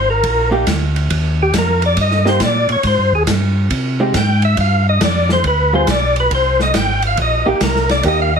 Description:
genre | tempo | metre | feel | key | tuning
soul jazz organ trio | 138 BPM | 4/4 | swing 66% on 8ths | C minor | A4 = 439 Hz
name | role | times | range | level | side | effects
percussive tonewheel organ | melody | 0.0-8.4 s | G4 to G5 | -16 LUFS | left 1 dB | overdrive, chorus vibrato, stopped rotary speaker
mellow tonewheel organ | bass | 0.0-8.4 s | Ab1 to C3 | -17 LUFS | equal | chorus vibrato, slow rotary speaker
open jazz drum kit | drums | 0.2-8.2 s | hi-hat, kick drum, ride cymbal, snare drum | -20 LUFS | right 2 dB | none
vintage hollow-body jazz guitar | accompaniment | 0.5-8.3 s | G3 to Ab4 | -18 LUFS | right 2 dB | none
room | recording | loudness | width
moderate studio ambience, RT60 0.5 s | heavily compressed radio sound | -13 LUFS | side -6 dB against mid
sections
0.0-8.4 A section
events
tonewheel organ solo 0.0-8.4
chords
0.0 Cm7 (rootless); 2.8 Abmaj7; 4.6 G7; 6.3 Cm7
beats
0.24 0.67 | 1.10 1.54 1.97 2.41 | 2.84 3.27 3.71 4.14 | 4.58 5.01 5.44 5.88 | 6.31 6.74 7.18 7.61 | 8.04

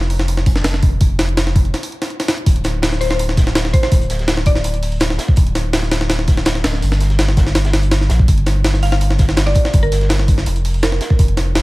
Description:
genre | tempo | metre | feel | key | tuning
drum and bass, jungle | 165 BPM | 4/4 | straight | unclear | A4 = 440 Hz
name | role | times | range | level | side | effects
saturated sub bass | bass | 0.0-11.6 s | D1 to Bb1 | -17 LUFS | equal | none
jungle sampler-style drum kit | drums | 0.0-11.6 s | hi-hat, kick drum, snare drum | -15 LUFS | equal | none
crunchy breakbeat drum kit | drums | 2.5-11.6 s | hi-hat, snare drum | -30 LUFS | right 1 dB | high-pass filter on hats, high-pass filter on snare, high-pass filter on room
mallet-like synth pluck | melody | 3.0-4.8, 8.8-11.2 s | Bb4 to F5 | -24 LUFS | equal | chorus, dub echo
room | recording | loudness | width
little or no reverb | vinyl crackle | -13 LUFS | side -20 dB against mid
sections
0.0-11.6 A section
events
break 1.7-2.5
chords
0.0 N.C.; 10.5 Fsus4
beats
0.28 0.65 | 1.01 1.37 1.74 2.10 | 2.46 2.83 3.19 3.56 | 3.92 4.28 4.65 5.01 | 5.37 5.74 6.10 6.46 | 6.83 7.19 7.55 7.92 | 8.28 8.65 9.01 9.37 | 9.74 10.10 10.46 10.83 | 11.19 11.55

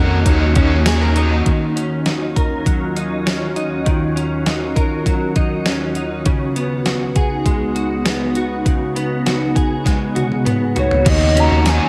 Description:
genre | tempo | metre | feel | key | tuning
dream pop | 100 BPM | 4/4 | straight | Eb minor | A4 = 439 Hz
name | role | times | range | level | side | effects
warbly nostalgic lead | melody | 0.0-0.9, 10.8-11.9 s | Db5 to Bb5 | -22 LUFS | equal | chorus, digital delay
biting overdriven guitar | accompaniment | 0.0-1.5, 11.0-11.9 s | Eb3 to Gb4 | -25 LUFS | equal | harmonic tremolo, subtle chorus
ethereal airy pad | sustained chords | 0.0-11.9 s | Db2 to Gb4 | -24 LUFS | equal | ensemble chorus, built-in reverb
direct-recorded clean electric guitar | arpeggios | 0.0-11.9 s | Db3 to Bb4 | -23 LUFS | equal | ensemble chorus, digital delay
round analog bass | bass | 0.0-1.4, 11.1-11.8 s | Eb2 to F2 | -18 LUFS | equal | none
glockenspiel with soft plastic mallets | texture | 0.0-1.2 s | Gb6 | -38 LUFS | equal | none
clean 12-bit digital drum machine | drums | 0.3-11.8 s | crash cymbal, hi-hat, kick drum, snare drum, tambourine, toms | -21 LUFS | equal | overdrive
room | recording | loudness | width
moderate scoring stage reverb, RT60 2.1 s | none | -17 LUFS | mono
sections
0.0-1.5 A section; 1.5-11.1 B section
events
drum fill 9.9-11.1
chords
0.0 Ebm7; 6.3 Db7sus4; 11.1 Ebm7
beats
0.26 0.86 | 1.46 2.06 2.66 3.26 | 3.86 4.46 5.06 5.66 | 6.26 6.86 7.46 8.06 | 8.66 9.26 9.86 10.46 | 11.06 11.66

